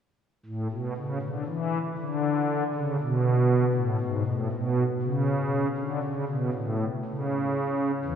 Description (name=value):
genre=classical, baroque-style 3-part fugue for pipe organ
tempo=59 BPM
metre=4/4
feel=straight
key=unclear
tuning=A4 = 440 Hz
part: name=pipe organ, strings celeste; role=solo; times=0.5-8.2 s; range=E2 to E3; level=-25 LUFS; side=equal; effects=none
room=wet church reverb, RT60 3.6 s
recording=heard from further back in the room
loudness=-25 LUFS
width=side -8 dB against mid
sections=0.0-8.2 A section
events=none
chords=none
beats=0.96 1.98 3.00 | 4.01 5.03 6.03 7.05 | 8.05